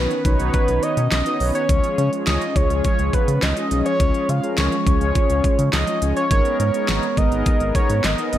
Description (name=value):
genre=synth-pop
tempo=104 BPM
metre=4/4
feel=straight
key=unclear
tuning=A4 = 440 Hz
part: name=fat analog lead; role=melody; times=0.0-8.4 s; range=B4 to E#5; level=-23 LUFS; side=right 1 dB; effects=slapback echo
part: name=mellow synth brass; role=accompaniment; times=0.0-8.4 s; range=B3 to D#5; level=-26 LUFS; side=left 2 dB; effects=chorus
part: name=warm analog pad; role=sustained chords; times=0.0-8.4 s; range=D#3 to A#4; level=-27 LUFS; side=right 1 dB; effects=chorus
part: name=round analog bass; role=bass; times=0.0-8.4 s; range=F#1 to C#3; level=-22 LUFS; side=equal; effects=none
part: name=pop drum kit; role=drums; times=0.1-8.4 s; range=handclaps, hi-hat, kick drum, snare drum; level=-21 LUFS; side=equal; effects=gated reverb
room=light reverb, digital ambience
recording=none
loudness=-17 LUFS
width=side -12 dB against mid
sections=0.0-8.4 A section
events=none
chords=0.0 Badd9; 1.7 C#; 6.3 G#madd9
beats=0.54 1.12 | 1.69 2.27 2.85 3.42 | 4.00 4.58 5.15 5.73 | 6.31 6.88 7.46 8.04